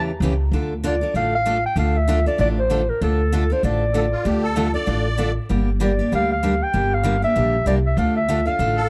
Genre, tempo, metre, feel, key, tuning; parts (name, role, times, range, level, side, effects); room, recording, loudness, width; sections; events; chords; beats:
acoustic string swing (jazz manouche); 193 BPM; 4/4; swing 59% on 8ths; D minor; A4 = 440 Hz
breathy clarinet; melody; 0.0-8.9 s; A4 to G5; -24 LUFS; equal
picked steel-string acoustic guitar; accompaniment; 0.0-8.8 s; C#3 to A4; -26 LUFS; equal
upright bass; bass; 0.0-8.9 s; G1 to E2; -24 LUFS; equal
musette accordion; second line; 3.9-5.3, 8.8-8.9 s; F4 to D5; -28 LUFS; equal
light reverb; dark, warm production; -20 LUFS; mono
0.5-8.9 A section
0.0 A7; 0.5 Dm; 5.5 Gm; 8.0 Dm
0.21 | 0.52 0.83 1.14 1.46 | 1.76 2.08 2.39 2.70 | 3.01 3.32 3.63 3.94 | 4.25 4.56 4.87 5.18 | 5.49 5.80 6.11 6.42 | 6.73 7.04 7.35 7.67 | 7.97 8.29 8.60